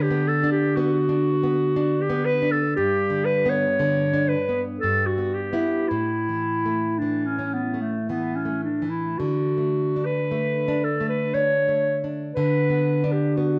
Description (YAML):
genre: romantic duo for clarinet and classical guitar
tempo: 56 BPM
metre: 3/4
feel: uneven beats, rubato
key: D major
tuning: A4 = 442 Hz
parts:
  - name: clear clarinet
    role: melody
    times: 0.0-13.6 s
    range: A3 to C#5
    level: -25 LUFS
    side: equal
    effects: cassette tape
  - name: nylon-string guitar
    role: accompaniment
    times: 0.0-13.6 s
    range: G2 to E4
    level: -27 LUFS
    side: equal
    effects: cassette tape
room: moderate spring reverb, RT60 1.4 s, small room ambience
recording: home recording on cassette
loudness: -23 LUFS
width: mono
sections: 0.0-13.6 A section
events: none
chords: 0.0 Bm/D; 2.8 G; 4.8 Em/G; 5.9 A; 9.2 D5; 12.4 Bm/D